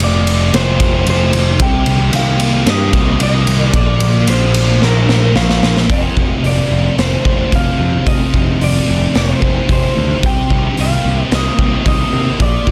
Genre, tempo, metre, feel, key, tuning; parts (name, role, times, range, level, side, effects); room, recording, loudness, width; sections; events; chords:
rock, shoegaze and dream pop; 111 BPM; 4/4; straight; F mixolydian; A4 = 440 Hz
electric guitar through a small old amp; melody; 0.0-12.7 s; Bb4 to G5; -23 LUFS; equal; digital delay
thick fuzz guitar; riff; 0.0-12.7 s; F2 to G4; -19 LUFS; equal; distortion, ensemble chorus
growling picked electric bass; bass; 0.0-12.7 s; F1 to C3; -18 LUFS; equal; overdrive
raw garage drum kit; drums; 0.0-12.7 s; hi-hat, kick drum, ride cymbal, snare drum; -19 LUFS; equal
small room ambience; dense, heavily limited modern master; -13 LUFS; mono
0.0-5.9 A section; 5.9-12.7 B section
drum fill 4.8-5.9
0.0 F7; 1.6 Cm7; 3.7 Bbmaj7; 5.9 F7; 10.2 Cm7